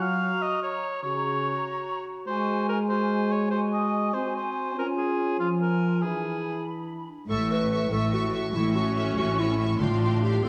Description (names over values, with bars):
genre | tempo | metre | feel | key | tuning
cinematic | 96 BPM (dotted quarters) | 12/8 | straight | A major from 7.3 s | A4 = 440 Hz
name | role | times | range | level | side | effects
mellow cor anglais | second line | 0.0-6.7 s | F4 to F5 | -32 LUFS | equal | none
small flute group | second line | 0.0-7.1 s | Ab5 to B5 | -39 LUFS | equal | none
warm clarinet | second line | 0.0-10.5 s | D4 to B4 | -33 LUFS | equal | none
mellow French horn section | sustained chords | 0.0-7.1 s | Db3 to Db4 | -31 LUFS | equal | none
warm symphonic violin section | melody | 7.3-10.5 s | C6 to C#6 | -38 LUFS | equal | none
warm symphonic violin section | second line | 7.3-10.5 s | E5 to G5 | -39 LUFS | equal | none
concert harp | arpeggios | 7.3-10.5 s | A2 to A4 | -35 LUFS | equal | none
rich symphonic cello section | bass | 7.3-10.5 s | A2 | -31 LUFS | equal | none
rich symphonic double bass section | bass | 7.3-10.5 s | A1 | -33 LUFS | equal | none
warm symphonic viola section | accompaniment | 8.6-10.5 s | C4 to D4 | -37 LUFS | equal | none
timpani | percussion | 9.8-10.4 s | A2 | -33 LUFS | equal | none
room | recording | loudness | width
wet scoring stage reverb, RT60 1.5 s | none | -26 LUFS | mono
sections
0.0-7.3 A section; 7.3-10.5 B section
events
none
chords
0.0 Gb; 2.3 Ab7; 4.8 Db; 6.0 E7; 7.3 A; 9.8 Fadd9/A